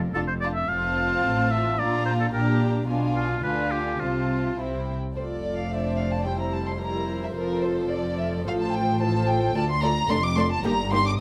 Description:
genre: quick classical-period movement for symphony orchestra.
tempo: 110 BPM.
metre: 2/4.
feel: straight.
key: F major.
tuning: A4 = 442 Hz.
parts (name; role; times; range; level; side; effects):
dark studio cello section; bass; 0.0-11.1 s; D2 to D3; -33 LUFS; equal; none.
rich studio double bass section; bass; 0.0-11.1 s; F1 to D2; -32 LUFS; equal; none.
clear oboe; second line; 0.1-4.6 s; F4 to F5; -29 LUFS; equal; none.
warm studio viola section; accompaniment; 0.1-11.0 s; F3 to F4; -32 LUFS; equal; none.
dark chamber violin section; melody; 0.2-11.1 s; Bb4 to D6; -32 LUFS; equal; none.
warm chamber violin section; second line; 0.2-11.0 s; E4 to D5; -34 LUFS; equal; none.
room: light reverb.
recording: close, detailed microphones.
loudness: -25 LUFS.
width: mono.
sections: 0.0-5.2 A section; 5.2-11.2 B section.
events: none.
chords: 0.0 Dm/F; 0.7 F; 1.8 Bb; 2.9 Bdim7; 4.0 F/C; 5.2 F; 6.3 C7/F; 7.4 F; 8.5 F/A; 9.6 Dm; 10.1 Dm/F; 10.6 Eb/G.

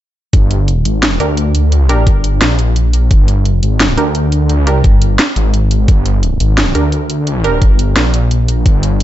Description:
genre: dark technical drum and bass.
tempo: 173 BPM.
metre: 4/4.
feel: straight.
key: G phrygian.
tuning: A4 = 441 Hz.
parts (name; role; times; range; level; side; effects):
wide detuned saw bass; bass; 0.3-9.0 s; G1 to D2; -12 LUFS; equal; chorus, tube saturation, sidechain pumping.
drum and bass drum kit; drums; 0.3-9.0 s; hi-hat, snare drum; -16 LUFS; equal; overdrive.
electronic kick drum; drums; 0.3-8.7 s; none; -9 LUFS; equal; overdrive.
filtered dub chord stab; stabs; 1.2-7.6 s; D4 to Bb4; -20 LUFS; right 3 dB; chorus, tape echo.
room: digital ambience.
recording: nothing above 7.9 kHz.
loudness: -10 LUFS.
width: side -13 dB against mid.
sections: 0.3-9.0 A section.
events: none.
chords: 0.3 Gm.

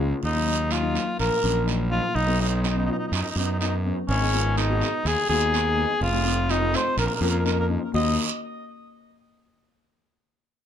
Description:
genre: calypso.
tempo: 125 BPM.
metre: 4/4.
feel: straight.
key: Eb minor.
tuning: A4 = 440 Hz.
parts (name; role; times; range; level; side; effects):
steel pan; accompaniment; 0.0-8.2 s; Gb3 to Gb4; -29 LUFS; left 3 dB; none.
fuzz fingered electric bass; bass; 0.0-8.2 s; F1 to F#2; -25 LUFS; equal; overdrive.
guiro; percussion; 0.2-8.2 s; none; -32 LUFS; right 8 dB; none.
warm cor anglais; melody; 0.3-8.2 s; Db4 to Eb5; -26 LUFS; left 1 dB; digital delay.
room: moderate small room ambience, RT60 0.5 s.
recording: none.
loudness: -21 LUFS.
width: side -9 dB against mid.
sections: 0.2-7.9 A section; 7.9-9.9 B section.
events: none.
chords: 0.2 Ebm; 2.2 B; 4.1 Abm; 6.0 F7; 7.0 Bbm; 7.9 Ebm.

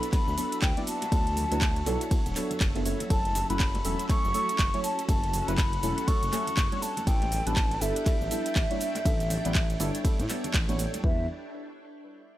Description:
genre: deep house.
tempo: 121 BPM.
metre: 4/4.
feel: swing 60% on 16ths.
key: unclear.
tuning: A4 = 440 Hz.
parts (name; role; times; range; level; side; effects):
mellow hollow concert flute; melody; 0.0-11.3 s; E5 to C#6; -32 LUFS; left 1 dB; analog delay.
soft string machine; sustained chords; 0.0-11.3 s; C#4 to G5; -39 LUFS; equal; ensemble chorus, sidechain pumping.
deep mellow chord stab; stabs; 0.0-11.2 s; F#3 to D5; -34 LUFS; right 1 dB; chorus, phaser, cassette tape, sidechain pumping, analog delay.
house drum kit; drums; 0.0-11.0 s; cabasa, handclaps, hi-hat, ride cymbal; -34 LUFS; right 1 dB; small room ambience.
electronic kick drum; drums; 0.1-11.2 s; none; -26 LUFS; equal; small room ambience.
congas; percussion; 0.1-11.0 s; none; -41 LUFS; right 2 dB; none.
smooth gliding synth bass; bass; 0.3-11.3 s; D1 to A2; -32 LUFS; equal; sidechain pumping.
room: digital ambience.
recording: dry, gritty hardware recording.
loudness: -25 LUFS.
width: side -14 dB against mid.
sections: 0.0-11.0 A section; 11.0-12.4 B section.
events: drop 0.0-11.0; band accent 10.5.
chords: 0.0 D69; 2.9 F#m7; 6.8 A9sus4; 11.0 Em7.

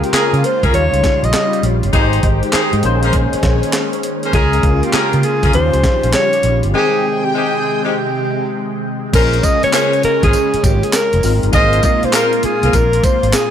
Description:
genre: R&B, new jack swing.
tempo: 100 BPM.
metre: 4/4.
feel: swing 66% on 16ths.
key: Bb dorian.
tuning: A4 = 440 Hz.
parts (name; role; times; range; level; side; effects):
mellow alto saxophone; melody; 0.0-13.5 s; G4 to Eb5; -17 LUFS; equal; none.
barky tine electric piano; accompaniment; 0.0-13.5 s; Eb3 to G5; -22 LUFS; left 5 dB; ensemble chorus.
lush unison pad; sustained chords; 0.0-13.5 s; Bb2 to G5; -21 LUFS; right 1 dB; chorus, phaser.
breakbeat sampler-style drum kit; drums; 0.0-13.5 s; crash cymbal, handclaps, hi-hat, kick drum, snare drum, tambourine; -17 LUFS; equal; none.
warm horn section; stabs; 0.1-12.7 s; Ab3 to C5; -22 LUFS; equal; none.
fingered electric bass; bass; 0.1-13.3 s; F1 to Db3; -17 LUFS; equal; none.
room: light reverb.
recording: none.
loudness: -12 LUFS.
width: side -9 dB against mid.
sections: 0.0-9.1 A section; 9.1-13.5 B section.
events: break 6.7-9.1.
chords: 0.0 Db6; 0.7 Eb9; 1.9 Abmaj7; 2.8 Bbm9; 4.3 Db6; 5.5 Eb9; 6.7 Abmaj7; 9.1 Bbm9; 11.2 Ab69.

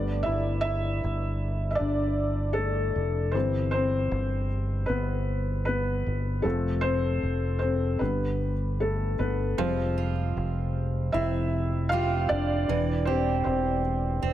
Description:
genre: pop.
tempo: 78 BPM.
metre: 4/4.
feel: straight.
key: C major.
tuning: A4 = 440 Hz.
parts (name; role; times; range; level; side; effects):
felt-muted upright piano; accompaniment; 0.0-14.3 s; D3 to F5; -28 LUFS; left 1 dB; none.
fingered electric bass; bass; 0.0-14.3 s; E1 to G1; -28 LUFS; equal; none.
fingerpicked steel-string acoustic guitar; arpeggios; 9.6-14.3 s; E3 to G4; -31 LUFS; right 8 dB; none.
room: moderate plate reverb, RT60 2.5 s.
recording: none.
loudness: -25 LUFS.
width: side -12 dB against mid.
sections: 0.0-9.6 A section; 9.6-14.3 B section.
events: felt piano solo 0.0-9.6, 9.6-14.3.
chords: 0.0 Gadd9; 3.3 C/G; 6.4 F; 8.0 G; 9.6 Fmadd9; 12.7 Cmaj7/E.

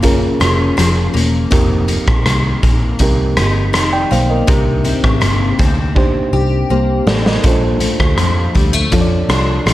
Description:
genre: indie pop, bedroom pop.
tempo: 81 BPM.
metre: 4/4.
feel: straight.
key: Bb major.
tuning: A4 = 440 Hz.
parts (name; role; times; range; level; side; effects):
picked steel-string acoustic guitar; accompaniment; 0.0-9.7 s; F2 to G4; -19 LUFS; left 4 dB; analog chorus, warbly pitch drift.
reed electric piano; accompaniment; 0.0-9.7 s; C4 to G5; -19 LUFS; right 3 dB; cassette tape.
vintage muted picked electric bass; bass; 0.0-9.7 s; E1 to F2; -16 LUFS; equal; none.
raw garage drum kit; drums; 0.0-9.7 s; hi-hat, kick drum, rim click, snare drum; -16 LUFS; equal; none.
room: studio reverb.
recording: none.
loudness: -12 LUFS.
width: side -15 dB against mid.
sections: 0.0-9.7 A section.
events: drum fill 6.0-7.4.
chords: 0.0 Gbmaj7; 1.5 F7sus4; 4.5 Cm7; 7.4 Bbmaj7.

